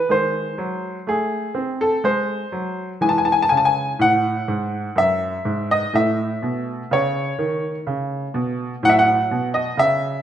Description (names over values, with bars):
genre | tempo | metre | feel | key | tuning
classical, baroque-style suite movement for grand piano | 62 BPM | 3/4 | rubato | unclear | A4 = 440 Hz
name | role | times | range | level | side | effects
bright baby grand piano | solo | 0.0-10.2 s | F#2 to A5 | -18 LUFS | equal | none
room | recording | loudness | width
moderate recital hall reverb, RT60 1.5 s | none | -18 LUFS | side -10 dB against mid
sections
0.0-10.2 A section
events
none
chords
0.1 G#7/D#; 3.0 C#m; 5.9 A; 8.8 F#m/A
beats
| 0.10 1.08 2.05 | 3.03 4.00 4.97 | 5.93 6.91 7.88 | 8.83 9.77